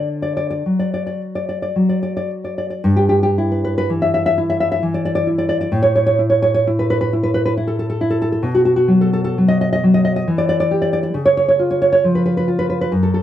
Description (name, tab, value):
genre	romantic piece for solo classical guitar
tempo	52-71 BPM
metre	3/4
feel	rubato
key	unclear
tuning	A4 = 443 Hz
part	nylon-string guitar	solo	0.0-13.2 s	F#2 to E5	-15 LUFS	equal	none
room	small room ambience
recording	dry, close 1970s-style studio recording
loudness	-15 LUFS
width	side -11 dB against mid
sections	0.0-2.8 A section; 2.8-13.2 B section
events	none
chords	0.0 D; 2.8 Em/G; 5.7 A5; 8.4 B5; 10.3 Em; 11.2 C#